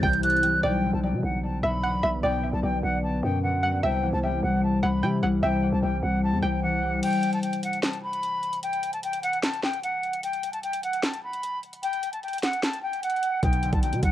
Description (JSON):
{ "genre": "hip hop, trap", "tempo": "150 BPM", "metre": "4/4", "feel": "half-time", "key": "B minor", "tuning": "A4 = 440 Hz", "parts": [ { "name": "reedy jazz flute", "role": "melody", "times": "0.0-14.1 s", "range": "F#5 to G6", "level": "-28 LUFS", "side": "equal", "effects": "cassette tape" }, { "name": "string-like resonator pluck", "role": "second line", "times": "0.0-6.6 s", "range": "D5 to G5", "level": "-29 LUFS", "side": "right 2 dB", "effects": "chorus, cassette tape, tape echo" }, { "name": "concert harp", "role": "accompaniment", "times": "0.0-7.1, 13.4-14.1 s", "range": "B2 to G3", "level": "-28 LUFS", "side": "left 2 dB", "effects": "cassette tape" }, { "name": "deep dark ambient pad", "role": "sustained chords", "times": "0.0-7.0 s", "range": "C3 to E5", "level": "-36 LUFS", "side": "equal", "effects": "chorus, built-in reverb, cassette tape" }, { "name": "growling 808-style bass", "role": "bass", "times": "0.0-7.0, 13.4-14.1 s", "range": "B1 to C3", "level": "-28 LUFS", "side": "equal", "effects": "none" }, { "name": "trap drum kit", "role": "drums", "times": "0.0-0.5, 7.0-14.1 s", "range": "crash cymbal, hi-hat, kick drum, snare drum", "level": "-28 LUFS", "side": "equal", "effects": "cassette tape" } ], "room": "light reverb", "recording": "home recording on cassette", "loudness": "-23 LUFS", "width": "side -12 dB against mid", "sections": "0.6-7.0 A section; 7.0-14.1 B section", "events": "break 7.0-13.4", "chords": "0.0 C; 0.6 Bm; 3.8 C; 7.0 N.C.; 13.4 Bm" }